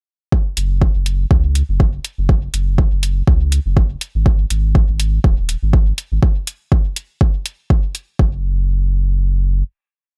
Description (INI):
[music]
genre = dub techno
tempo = 122 BPM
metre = 4/4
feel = swing 56% on 16ths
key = unclear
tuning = A4 = 440 Hz
[part]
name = electronic kick drum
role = drums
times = 0.3-8.3 s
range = none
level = -16 LUFS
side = equal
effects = overdrive
[part]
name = warm sub bass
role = bass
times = 0.6-9.6 s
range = D#1 to C#2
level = -19 LUFS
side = equal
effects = sidechain pumping
[part]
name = electronic hi-hat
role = drums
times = 0.6-8.1 s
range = none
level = -25 LUFS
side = equal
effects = overdrive
[sound]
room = little or no reverb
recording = none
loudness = -17 LUFS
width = mono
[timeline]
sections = 0.3-8.2 groove; 8.2-10.2 final note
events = none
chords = none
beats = | 0.33 0.82 1.31 1.80 | 2.29 2.78 3.28 3.77 | 4.26 4.75 5.24 5.74 | 6.23 6.72 7.21 7.70 | 8.19 8.69 9.18